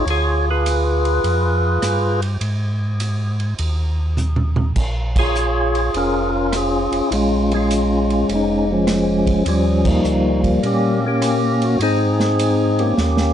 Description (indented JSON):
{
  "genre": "soul jazz organ trio",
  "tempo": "102 BPM",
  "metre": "4/4",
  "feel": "swing 67% on 8ths",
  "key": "unclear",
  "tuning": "A4 = 440 Hz",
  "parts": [
    { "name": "percussive tonewheel organ", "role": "melody", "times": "0.0-13.3 s", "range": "F3 to Db5", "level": "-17 LUFS", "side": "left 1 dB", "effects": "slow rotary speaker, overdrive" },
    { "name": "tonewheel organ", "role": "bass", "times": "0.0-13.3 s", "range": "F1 to Bb2", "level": "-21 LUFS", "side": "equal", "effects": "slow rotary speaker" },
    { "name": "vintage drum kit", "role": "drums", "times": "0.1-13.3 s", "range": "crash cymbal, hi-hat, kick drum, ride cymbal, rim click, snare drum, toms", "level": "-26 LUFS", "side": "right 2 dB", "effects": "none" }
  ],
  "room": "light reverb",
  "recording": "dark, warm production, nothing above 10.9 kHz",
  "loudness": "-16 LUFS",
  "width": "side -10 dB against mid",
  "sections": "0.0-13.3 A section",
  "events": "drum fill 4.2-4.8, 13.0-13.3; band accent 5.1, 9.8",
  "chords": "0.1 Ddim7; 2.4 Ab5; 4.8 Bbm7; 9.5 Eb9; 11.8 Abadd9"
}